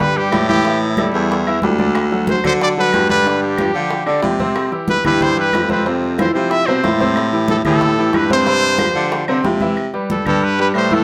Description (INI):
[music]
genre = latin, salsa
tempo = 184 BPM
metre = 4/4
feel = straight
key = C major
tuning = A4 = 440 Hz
[part]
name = bright trumpet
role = melody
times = 0.0-11.0 s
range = E4 to E5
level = -21 LUFS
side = equal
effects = none
[part]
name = bright grand piano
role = accompaniment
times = 0.0-11.0 s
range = C3 to E5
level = -21 LUFS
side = equal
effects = none
[part]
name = clear baritone saxophone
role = bass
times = 0.0-11.0 s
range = D2 to D3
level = -22 LUFS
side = equal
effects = none
[part]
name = bongos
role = percussion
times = 0.0-9.8 s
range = none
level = -28 LUFS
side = equal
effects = none
[part]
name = congas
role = percussion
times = 0.0-11.0 s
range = none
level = -26 LUFS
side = equal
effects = none
[part]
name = claves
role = percussion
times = 0.3-10.9 s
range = none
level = -33 LUFS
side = equal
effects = none
[sound]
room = moderate studio reverb, RT60 0.6 s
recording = none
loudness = -16 LUFS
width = mono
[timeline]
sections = 0.0-9.8 A section; 9.8-11.0 A section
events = none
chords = 0.0 G69; 0.6 A5; 2.0 D; 3.3 G5; 4.6 Cmaj7; 5.9 Fmaj7; 7.2 Am7; 8.5 G7sus4; 9.8 Cmaj7